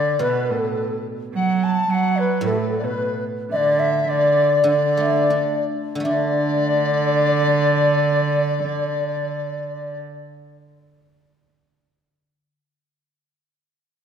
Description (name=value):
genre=chinese traditional, Chinese chamber ensemble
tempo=75-111 BPM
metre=2/4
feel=rubato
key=D gong mode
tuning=A4 = 440 Hz
part: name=mellow xiao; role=melody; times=0.0-10.0 s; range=A4 to A5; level=-22 LUFS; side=left 1 dB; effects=none
part: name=bright reedy large dizi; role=second line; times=0.0-10.0 s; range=F#4 to A5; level=-25 LUFS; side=left 5 dB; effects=none
part: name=rich cello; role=second line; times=0.0-10.0 s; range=A2 to F#3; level=-23 LUFS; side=right 6 dB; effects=none
part: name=guzheng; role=accompaniment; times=0.0-12.6 s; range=A2 to D4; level=-27 LUFS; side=equal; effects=none
room=wet concert hall reverb, RT60 2.2 s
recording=none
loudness=-18 LUFS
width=side -8 dB against mid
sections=0.0-6.1 A section; 6.1-9.2 B section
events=slowing down 3.5-6.1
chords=none